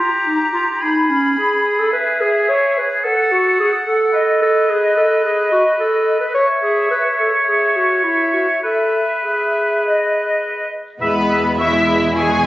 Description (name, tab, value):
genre	quick classical-period movement for symphony orchestra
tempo	108 BPM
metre	4/4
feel	rubato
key	E major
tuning	A4 = 440 Hz
part	bright flute section	second line	0.0-12.5 s	D#5 to C#6	-20 LUFS	left 1 dB	none
part	clear oboe	second line	0.0-12.5 s	G4 to E5	-19 LUFS	equal	none
part	mellow clarinet	second line	0.0-12.3 s	C#4 to C#5	-18 LUFS	equal	none
part	muted chamber violin section	melody	11.0-12.5 s	B4 to G#5	-19 LUFS	left 1 dB	none
part	muted studio violin section	second line	11.0-12.5 s	B3 to G#4	-22 LUFS	left 1 dB	none
part	muted symphonic viola section	accompaniment	11.0-12.5 s	G#3 to B3	-23 LUFS	equal	none
part	warm French horn section	sustained chords	11.0-12.5 s	G#3 to E4	-22 LUFS	equal	none
part	muted chamber cello section	bass	11.0-12.5 s	E2	-24 LUFS	right 1 dB	none
part	muted chamber double bass section	bass	11.0-12.5 s	E1	-28 LUFS	right 1 dB	none
room	wet recital hall reverb, RT60 1.4 s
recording	recorded on a phone in the room, club reverb, nothing above 7.8 kHz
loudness	-14 LUFS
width	side -16 dB against mid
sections	0.0-11.0 A section; 11.0-12.5 B section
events	none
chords	0.0 D#add9 (rootless); 0.8 G#m; 1.9 E/G#; 3.0 F#m; 4.1 B; 6.3 C#m; 8.6 E; 9.8 B; 11.0 E